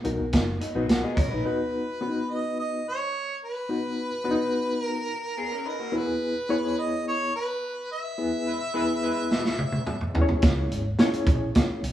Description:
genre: uptempo 1960s-style soul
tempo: 107 BPM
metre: 4/4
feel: straight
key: B major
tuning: A4 = 439 Hz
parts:
  - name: reed electric piano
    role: accompaniment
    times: 0.0-11.8 s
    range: B3 to F#5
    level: -28 LUFS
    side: left 2 dB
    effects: fast tremolo
  - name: vintage muted fingered electric bass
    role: bass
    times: 0.0-1.4, 10.4-11.9 s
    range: F#1 to C#2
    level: -30 LUFS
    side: right 1 dB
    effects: none
  - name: vintage drum kit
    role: drums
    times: 0.0-1.3, 9.3-11.9 s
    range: hi-hat, kick drum, snare drum, toms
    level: -23 LUFS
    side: right 1 dB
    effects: none
  - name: electric guitar through a small old amp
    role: riff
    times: 0.6-1.6, 5.4-6.1 s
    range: F#3 to B4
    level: -34 LUFS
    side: left 2 dB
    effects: tremolo
  - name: mellow harmonica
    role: melody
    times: 1.2-10.1 s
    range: A#4 to E5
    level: -30 LUFS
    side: equal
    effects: none
  - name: clear horn section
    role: second line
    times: 8.5-9.4 s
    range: G#3 to B4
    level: -33 LUFS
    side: right 3 dB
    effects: none
room: moderate stone room reverb, RT60 1.4 s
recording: band playing live in one room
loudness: -24 LUFS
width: side -12 dB against mid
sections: 0.0-1.4 A section; 1.4-11.9 B section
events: band accent 8.2-10.4; drum fill 9.3-10.4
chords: 0.0 B; 5.9 E; 10.1 C#m

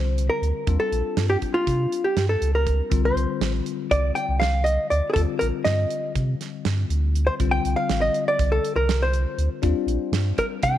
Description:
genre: progressive instrumental, band music in an uneven meter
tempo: 241 BPM (eighths)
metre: 9/8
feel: straight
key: C dorian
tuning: A4 = 439 Hz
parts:
  - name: hollow-body jazz guitar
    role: melody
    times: 0.0-10.8 s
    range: F4 to G5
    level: -23 LUFS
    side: equal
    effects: none
  - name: bell-like tine electric piano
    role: accompaniment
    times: 0.0-10.8 s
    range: D3 to F4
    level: -30 LUFS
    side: left 10 dB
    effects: phaser
  - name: pure sine sub bass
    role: bass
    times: 0.0-10.8 s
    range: A1 to C3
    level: -22 LUFS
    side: equal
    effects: none
  - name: damped 70s drum kit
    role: drums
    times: 0.2-10.8 s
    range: hi-hat, kick drum, snare drum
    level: -29 LUFS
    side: right 4 dB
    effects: none
room: light reverb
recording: 1960s-style stereo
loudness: -20 LUFS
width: side -12 dB against mid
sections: 0.0-10.8 A section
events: hollow-body jazz guitar solo 0.0-10.8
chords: 0.0 Csus2; 0.7 Ebadd9 (rootless); 2.9 Csus2; 5.2 Ebadd9; 7.4 Csus2; 9.6 Ebadd9 (rootless)

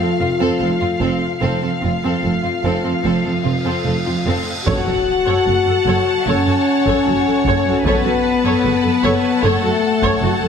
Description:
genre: cinematic, epic orchestral film score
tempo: 75 BPM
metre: 4/4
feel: straight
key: F# harmonic minor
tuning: A4 = 440 Hz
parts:
  - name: rich symphonic violin section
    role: melody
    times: 0.0-10.5 s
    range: A4 to F#5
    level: -24 LUFS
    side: left 2 dB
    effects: none
  - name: warm symphonic violin section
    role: second line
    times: 0.0-10.5 s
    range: F4 to A5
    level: -25 LUFS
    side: left 2 dB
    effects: none
  - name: warm symphonic viola section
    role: accompaniment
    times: 0.0-10.5 s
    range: C4 to C#5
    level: -23 LUFS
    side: right 1 dB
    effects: none
  - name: mellow French horn section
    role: sustained chords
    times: 0.0-10.5 s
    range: A3 to F#4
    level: -19 LUFS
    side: left 4 dB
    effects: none
  - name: rich symphonic cello section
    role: bass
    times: 0.0-10.5 s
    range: F2 to F#2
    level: -23 LUFS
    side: right 4 dB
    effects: none
  - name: rich symphonic double bass section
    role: bass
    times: 0.2-10.3 s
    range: F1 to F#1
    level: -24 LUFS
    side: right 4 dB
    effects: none
  - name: cymbal swell and impact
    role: sound effects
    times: 3.2-7.9 s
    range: none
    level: -30 LUFS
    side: right 1 dB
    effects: none
  - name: taiko ensemble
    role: drums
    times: 4.7-10.5 s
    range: none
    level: -25 LUFS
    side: equal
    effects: none
room: moderate scoring stage reverb, RT60 1.9 s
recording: heavily compressed radio sound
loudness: -15 LUFS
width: side -7 dB against mid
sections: 0.0-4.7 A section; 4.7-10.5 B section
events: build-up 0.0-4.7; cymbal swell 3.2-4.7; impact 4.7-7.9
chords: 0.0 F; 4.7 F#m

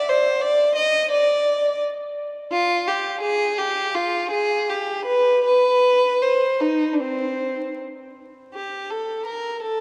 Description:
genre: classical, baroque-style suite movement for unaccompanied violin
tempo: 76-88 BPM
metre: 4/4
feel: rubato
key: C minor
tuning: A4 = 440 Hz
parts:
  - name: warm violin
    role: solo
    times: 0.0-9.8 s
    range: C4 to Eb5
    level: -21 LUFS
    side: equal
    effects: none
room: wet church reverb, RT60 3.4 s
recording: dark, warm production, vinyl crackle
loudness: -21 LUFS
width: mono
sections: 0.0-8.5 A section; 8.5-9.8 A section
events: none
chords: none

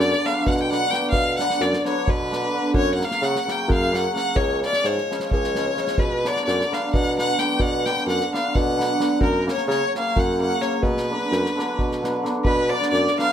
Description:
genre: balkan folk, Balkan wedding band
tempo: 260 BPM (eighths)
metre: 7/8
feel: straight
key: B hungarian minor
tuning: A4 = 437 Hz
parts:
  - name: rich violin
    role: melody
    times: 0.0-13.3 s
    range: A#4 to G5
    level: -23 LUFS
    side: left 2 dB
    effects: none
  - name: cimbalom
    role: accompaniment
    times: 0.0-13.3 s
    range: C#3 to D4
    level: -25 LUFS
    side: right 1 dB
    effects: none
  - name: mellow bassoon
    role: bass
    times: 0.0-13.1 s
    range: C#2 to C#3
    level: -24 LUFS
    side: equal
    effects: none
  - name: unplugged drum kit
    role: percussion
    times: 0.0-13.2 s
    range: kick drum, snare drum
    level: -27 LUFS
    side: equal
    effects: none
  - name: mellow accordion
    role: second line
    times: 12.5-13.3 s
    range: B4 to E#5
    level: -26 LUFS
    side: right 6 dB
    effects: none
room: moderate small room reverb, RT60 0.5 s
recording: none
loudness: -19 LUFS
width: side -9 dB against mid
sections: 0.0-12.4 A section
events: none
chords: 0.0 Bm; 2.7 F#; 4.4 C#; 6.0 Bm; 9.2 F#; 10.8 Bm

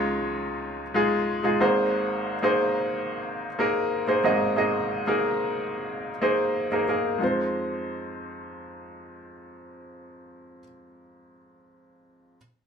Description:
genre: pop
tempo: 91 BPM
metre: 4/4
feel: straight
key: F minor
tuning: A4 = 440 Hz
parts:
  - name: bright upright piano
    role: solo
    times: 0.0-12.4 s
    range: Ab1 to Eb5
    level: -24 LUFS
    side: equal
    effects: none
room: wet small room reverb, RT60 0.6 s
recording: band playing live in one room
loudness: -23 LUFS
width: side -6 dB against mid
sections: 0.0-7.2 A section; 7.2-9.9 B section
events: none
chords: 0.0 Dbadd9; 1.6 Abadd9; 7.2 Fm7

